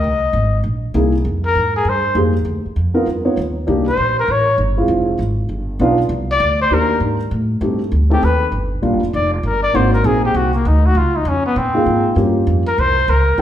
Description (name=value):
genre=jazz, small-group swing and bop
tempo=198 BPM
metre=4/4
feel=swing 61% on 8ths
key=C minor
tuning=A4 = 440 Hz
part: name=mellow trumpet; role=melody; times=0.0-13.4 s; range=Bb3 to Eb5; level=-17 LUFS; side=left 2 dB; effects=none
part: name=upright bass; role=bass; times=0.0-13.4 s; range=F1 to Bb2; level=-18 LUFS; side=equal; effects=none
part: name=dark baby grand piano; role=accompaniment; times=0.9-13.4 s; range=G3 to Db5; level=-18 LUFS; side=equal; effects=none
room=wet large studio reverb, RT60 1.2 s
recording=band playing live in one room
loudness=-14 LUFS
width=side -11 dB against mid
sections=0.0-8.5 A section; 8.5-13.4 B section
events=none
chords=0.0 C7alt; 1.3 Fm11; 2.5 Dm6; 3.1 Gaug7; 3.7 Cm9; 4.3 A7; 4.9 Fmmaj7; 5.5 G7b13; 6.1 Cm9; 7.3 Am7b5; 7.9 D5; 8.5 Gm7; 9.7 Ab9; 11.0 Db69; 12.2 Gm7b5; 12.8 Bbmadd9/C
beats=| 0.04 0.34 0.65 0.95 | 1.25 1.55 1.86 2.16 | 2.46 2.77 3.07 3.37 | 3.67 3.98 4.28 4.58 | 4.89 5.19 5.49 5.80 | 6.10 6.40 6.71 7.01 | 7.31 7.62 7.92 8.22 | 8.53 8.83 9.13 9.44 | 9.74 10.04 10.35 10.65 | 10.95 11.26 11.56 11.86 | 12.17 12.47 12.78 13.08 | 13.38